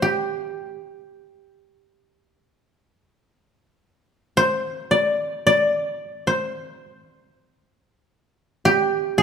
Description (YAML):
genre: japanese traditional, Japanese chamber music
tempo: 56 BPM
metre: 4/4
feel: rubato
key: unclear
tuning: A4 = 440 Hz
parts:
  - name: koto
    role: solo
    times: 0.0-9.2 s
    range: G4 to D5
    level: -19 LUFS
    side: equal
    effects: none
room: moderate recital hall reverb, RT60 1.7 s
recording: none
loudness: -20 LUFS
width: side -7 dB against mid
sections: 0.0-4.4 A section; 4.4-9.2 B section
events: none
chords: none